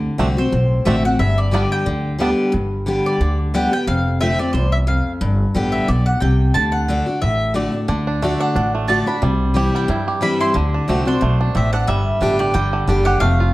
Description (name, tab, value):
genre	bluegrass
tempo	180 BPM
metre	4/4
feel	swing 55% on 8ths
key	G major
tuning	A4 = 439 Hz
part	picked steel-string acoustic guitar	accompaniment	0.0-13.5 s	E2 to G4	-20 LUFS	left 1 dB	none
part	upright bass	bass	0.0-13.5 s	F1 to G2	-20 LUFS	equal	none
part	bluegrass banjo	melody	0.2-2.3, 7.9-13.5 s	D3 to G4	-24 LUFS	right 3 dB	none
part	mandolin	melody	0.4-13.5 s	C5 to C6	-22 LUFS	equal	none
room	moderate large studio reverb, RT60 1.4 s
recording	dark, warm production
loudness	-16 LUFS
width	side -18 dB against mid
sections	0.0-2.5 A section; 2.5-13.2 A section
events	none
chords	0.0 D7; 1.2 G; 3.9 F6; 5.2 G; 6.5 D; 9.2 C; 10.6 D7; 11.9 G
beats	0.19 0.53 0.86 | 1.20 1.53 1.87 2.20 | 2.54 2.87 3.21 3.54 | 3.88 4.21 4.54 4.88 | 5.21 5.55 5.88 6.22 | 6.55 6.88 7.22 7.55 | 7.88 8.22 8.55 8.88 | 9.22 9.55 9.88 10.22 | 10.55 10.88 11.22 11.55 | 11.88 12.22 12.55 12.88 | 13.22